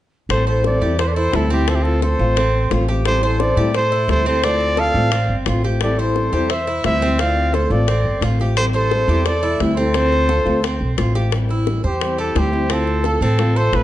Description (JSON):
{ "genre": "latin, Cuban son and guajira", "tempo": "174 BPM", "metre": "4/4", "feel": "straight", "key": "A minor", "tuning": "A4 = 438 Hz", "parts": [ { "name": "warm trumpet", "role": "melody", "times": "0.3-13.8 s", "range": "G4 to F5", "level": "-21 LUFS", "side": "equal", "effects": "plate reverb" }, { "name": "silver concert flute", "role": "second line", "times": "0.3-10.9 s", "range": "E4 to D5", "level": "-27 LUFS", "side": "right 2 dB", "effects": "none" }, { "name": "fingerpicked steel-string acoustic guitar", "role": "accompaniment", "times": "0.3-13.8 s", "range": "D3 to F4", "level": "-24 LUFS", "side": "left 3 dB", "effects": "none" }, { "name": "upright bass", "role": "bass", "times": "0.3-13.8 s", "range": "G1 to A2", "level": "-19 LUFS", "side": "equal", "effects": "none" }, { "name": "bongos", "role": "percussion", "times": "0.3-13.8 s", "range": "none", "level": "-26 LUFS", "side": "left 9 dB", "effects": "none" }, { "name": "Cuban tres", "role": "arpeggios", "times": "0.5-13.8 s", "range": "C4 to C5", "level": "-24 LUFS", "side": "right 3 dB", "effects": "none" } ], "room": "moderate large studio reverb, RT60 0.8 s", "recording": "dark, warm production, nothing above 10.5 kHz", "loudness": "-15 LUFS", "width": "side -13 dB against mid", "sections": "0.3-11.3 A section; 11.3-13.8 B section", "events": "trumpet solo 11.3-13.8", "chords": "0.3 Am7; 1.7 Dm7; 3.1 Am7; 4.4 Dm7; 5.8 Am7; 7.2 Dm7; 8.6 Am7; 9.9 Dm7; 11.3 Am7; 12.7 Dm7" }